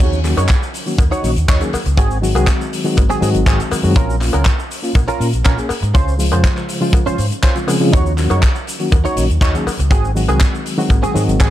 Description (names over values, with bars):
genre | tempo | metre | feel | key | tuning
nu-disco, nu disco | 121 BPM | 4/4 | straight | Eb dorian | A4 = 441 Hz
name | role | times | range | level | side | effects
direct-recorded clean electric guitar | riff | 0.0-11.5 s | C4 to Db5 | -23 LUFS | right 2 dB | analog chorus, digital delay
overdriven fingered electric bass | bass | 0.0-11.5 s | Ab1 to Bb2 | -17 LUFS | equal | none
kick drum | drums | 0.0-11.5 s | none | -14 LUFS | equal | none
tight funk drum kit | drums | 0.0-11.5 s | crash cymbal, handclaps, hi-hat, shaker | -24 LUFS | left 1 dB | none
reed electric piano | accompaniment | 0.2-11.5 s | Db3 to C5 | -20 LUFS | left 1 dB | fast tremolo, sidechain pumping, digital delay
cowbell | percussion | 0.4-11.0 s | none | -28 LUFS | left 4 dB | none
room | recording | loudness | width
light reverb | dark, warm production | -13 LUFS | side -13 dB against mid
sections
0.0-11.5 A section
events
none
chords
0.0 Ebm7; 2.0 Ab7; 4.0 Bbm; 5.9 Dbmaj7; 7.9 Ebm7; 9.9 Ab7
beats
| 0.00 0.49 0.99 1.49 | 1.98 2.48 2.97 3.47 | 3.96 4.46 4.96 5.45 | 5.95 6.44 6.94 7.43 | 7.93 8.43 8.92 9.42 | 9.91 10.41 10.91 11.40